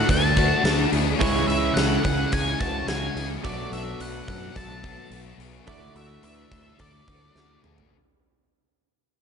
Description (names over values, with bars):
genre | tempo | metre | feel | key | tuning
rock, shoegaze and dream pop | 107 BPM | 4/4 | straight | D lydian | A4 = 440 Hz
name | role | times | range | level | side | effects
octave-fuzz lead guitar | melody | 0.0-7.6 s | C#5 to A5 | -28 LUFS | equal | distortion, slapback echo
picked plugged-in twelve-string acoustic guitar | arpeggios | 0.0-7.9 s | E4 to B4 | -34 LUFS | left 9 dB | ensemble chorus, slapback echo
direct-recorded clean electric guitar | riff | 0.0-7.9 s | B2 to F#4 | -30 LUFS | right 12 dB | reverse reverb
thick fuzz guitar | riff | 0.0-7.9 s | B2 to D4 | -29 LUFS | left 11 dB | distortion, ensemble chorus
growling fingered electric bass | bass | 0.1-7.8 s | B1 to F#2 | -28 LUFS | right 1 dB | overdrive
huge arena drum kit | drums | 0.1-7.9 s | hi-hat, kick drum, snare drum, toms | -27 LUFS | equal | none
room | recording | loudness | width
light reverb, small room reverb | nothing above 10.8 kHz | -20 LUFS | side -6 dB against mid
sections
0.0-7.9 A section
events
fade-out 0.0-7.9; drum fill 7.3-7.9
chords
0.0 D; 1.2 C#m; 3.4 Bm7; 5.7 Dadd9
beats
0.08 0.64 | 1.20 1.76 2.31 2.87 | 3.43 3.99 4.55 5.11 | 5.67 6.23 6.79 7.35